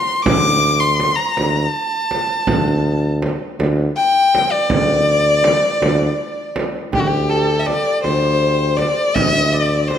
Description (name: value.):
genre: Persian modal ensemble.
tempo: 54 BPM (dotted quarters).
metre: 6/8.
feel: straight.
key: D dastgah homayun.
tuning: A4 = 443 Hz.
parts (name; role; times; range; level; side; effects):
warm violin; melody; 0.0-10.0 s; F#4 to D6; -16 LUFS; left 2 dB; none.
warm tuba; bass; 0.3-10.0 s; D2; -20 LUFS; right 1 dB; none.
frame drum; percussion; 0.3-10.0 s; none; -22 LUFS; right 2 dB; none.
santur; second line; 6.9-10.0 s; G4 to Eb5+45c; -23 LUFS; right 2 dB; none.
room: wet recital hall reverb, RT60 1.6 s.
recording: none.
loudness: -14 LUFS.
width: side -9 dB against mid.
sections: 0.0-6.9 A section; 6.9-10.0 B section.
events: none.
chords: none.